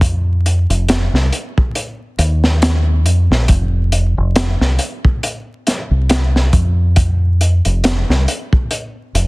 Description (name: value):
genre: trip hop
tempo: 69 BPM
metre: 4/4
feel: swing 57% on 16ths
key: unclear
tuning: A4 = 440 Hz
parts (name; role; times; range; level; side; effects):
- deep dub fingered electric bass; bass; 0.0-9.3 s; F1 to F2; -13 LUFS; equal; tube saturation
- crunchy breakbeat drum kit; drums; 0.0-9.3 s; hi-hat, kick drum, snare drum; -16 LUFS; equal; none
room: little or no reverb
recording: dense, heavily limited modern master, vinyl crackle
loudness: -13 LUFS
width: side -25 dB against mid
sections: 0.0-3.5 A section; 3.5-9.3 B section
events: none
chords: none